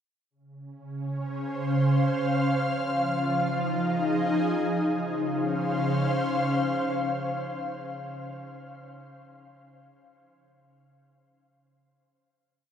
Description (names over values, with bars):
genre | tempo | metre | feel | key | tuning
ambient | free time | none | none | Db major | A4 = 439 Hz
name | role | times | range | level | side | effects
ethereal airy pad | solo | 0.9-8.0 s | Db3 to F5 | -25 LUFS | equal | ensemble chorus, built-in reverb, tape echo
room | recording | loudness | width
wet concert hall reverb, RT60 2.1 s | none | -24 LUFS | side -8 dB against mid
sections
0.3-4.9 A section; 4.9-7.2 final chord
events
none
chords
0.3 Dbmaj7; 2.6 Fm7; 4.9 Dbmaj7